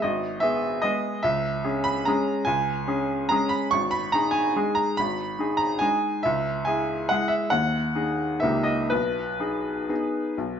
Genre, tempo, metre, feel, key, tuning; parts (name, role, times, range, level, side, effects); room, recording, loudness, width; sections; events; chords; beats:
classical, piano waltz; 119-161 BPM; 3/4; rubato; G# minor; A4 = 437 Hz
bright upright piano; solo; 0.0-10.6 s; G#1 to C#6; -22 LUFS; equal
wet large studio reverb, RT60 1.3 s; nothing above 7.7 kHz; -22 LUFS; side -8 dB against mid
0.0-10.6 A section
0.0 G#m; 1.2 C#m; 3.7 G#m; 6.3 C#m; 7.5 G#5/D#; 8.4 D#7/C#; 8.9 G#m/B
| 0.03 0.42 0.84 | 1.25 1.65 2.07 | 2.47 2.87 3.31 | 3.72 4.12 4.55 | 4.98 5.40 5.83 | 6.25 6.67 7.11 | 7.54 7.97 8.43 | 8.91 9.40 9.90 | 10.38